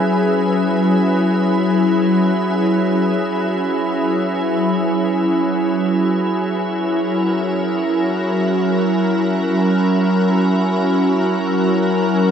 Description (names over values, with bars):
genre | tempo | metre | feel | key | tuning
ambient | free time | none | none | F# mixolydian | A4 = 442 Hz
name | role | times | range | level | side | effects
soft additive organ-like pad | sustained chords | 0.0-12.3 s | F#3 to B4 | -15 LUFS | equal | ensemble chorus, built-in reverb
room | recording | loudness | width
wet cathedral reverb, RT60 6.6 s | dark, warm production | -15 LUFS | side -8 dB against mid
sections
0.0-12.3 A section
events
none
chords
0.0 F#7sus4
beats
free time